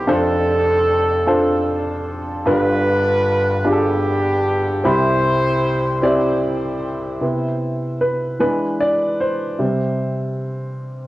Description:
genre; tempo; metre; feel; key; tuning
gospel; 50 BPM (dotted quarters); 6/8; straight; C major; A4 = 440 Hz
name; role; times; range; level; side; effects
warm horn section; melody; 0.0-6.4 s; B3 to C5; -19 LUFS; equal; tape echo
warm upright piano; accompaniment; 0.0-11.1 s; F1 to C6; -18 LUFS; equal; none
room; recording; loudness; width
moderate small room ambience, RT60 0.5 s; home recording on cassette; -16 LUFS; side -17 dB against mid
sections
0.0-7.2 A section; 7.2-11.1 B section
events
upright piano solo 7.2-11.1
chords
0.1 F6; 2.5 G7; 4.8 Cmaj7; 8.4 E7; 9.6 C5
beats
| 0.09 1.28 | 2.47 3.65 | 4.84 6.03 | 7.22 8.41 | 9.60 10.79

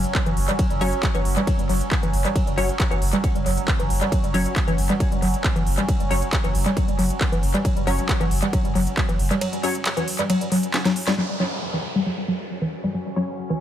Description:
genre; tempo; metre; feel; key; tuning
driving peak-time techno; 136 BPM; 4/4; straight; unclear; A4 = 440 Hz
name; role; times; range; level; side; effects
saturated sub bass; bass; 0.0-9.3 s; F#1; -25 LUFS; equal; overdrive, sidechain pumping, low-pass filter
deep dark ambient pad; drone; 0.0-13.6 s; F#3 to C#4; -30 LUFS; right 2 dB; chorus, built-in reverb, sidechain pumping
techno drum kit; drums; 0.0-11.2 s; handclaps, hi-hat, ride cymbal, snare drum; -28 LUFS; right 1 dB; sidechain pumping on hats, studio reverb, sidechain pumping on cymbals, tape echo
electronic kick drum; drums; 0.1-9.1 s; none; -23 LUFS; equal; studio reverb
woody wave-folded pluck; riff; 0.3-13.5 s; E3 to C#4; -25 LUFS; left 1 dB; chorus, sidechain pumping, analog delay
filtered dub chord stab; stabs; 0.8-13.3 s; F#3 to C#5; -29 LUFS; left 2 dB; ensemble chorus, sidechain pumping, tape echo
downlifter; sound effects; 11.2-13.6 s; none; -32 LUFS; right 1 dB; none
room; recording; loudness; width
light reverb; echo-heavy mix; -20 LUFS; side -11 dB against mid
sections
0.0-11.2 A section; 11.2-13.6 B section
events
drop 0.0-11.2; drum fill 10.7-11.2; filter sweep on synth arpeggio sound 11.2-13.6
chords
0.0 F#5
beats
0.15 | 0.59 1.03 1.47 1.91 | 2.35 2.80 3.24 3.68 | 4.12 4.56 5.00 5.44 | 5.88 6.33 6.77 7.21 | 7.65 8.09 8.53 8.97 | 9.41 9.86 10.30 10.74 | 11.18 11.62 12.06 12.50 | 12.94 13.38

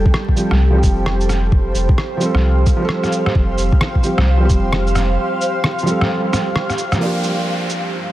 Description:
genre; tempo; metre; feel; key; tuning
future garage; 131 BPM; 4/4; swing 62% on 16ths; unclear; A4 = 440 Hz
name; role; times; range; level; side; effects
granular cloud pad; sustained chords; 0.0-8.1 s; G3 to G5; -22 LUFS; right 1 dB; built-in reverb, sidechain pumping
soft dub sub bass; bass; 0.0-5.2 s; F1 to C2; -16 LUFS; equal; tube saturation, sidechain pumping
electronic kick drum; drums; 0.1-4.6 s; none; -15 LUFS; equal; none
electronic rim click and shaker; drums; 0.1-7.8 s; none; -22 LUFS; equal; soft clipping on snare
felt-muted upright piano; accompaniment; 0.4-8.1 s; F3 to A4; -21 LUFS; right 1 dB; sidechain pumping, low-pass filter, tape echo
downlifter; sound effects; 7.0-8.1 s; none; -26 LUFS; equal; none
room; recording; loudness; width
light reverb, digital ambience; dense, heavily limited modern master, vinyl crackle; -14 LUFS; side -14 dB against mid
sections
0.0-7.0 A section; 7.0-8.1 B section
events
break 5.2-7.0; band accent 6.6; filter sweep on ambient pad 7.0-8.1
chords
0.0 Fsus2; 7.0 Gm7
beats
0.15 0.60 1.06 | 1.52 1.98 2.44 2.89 | 3.35 3.81 4.27 4.73 | 5.18 5.64 6.10 6.56 | 7.02 7.47 7.93

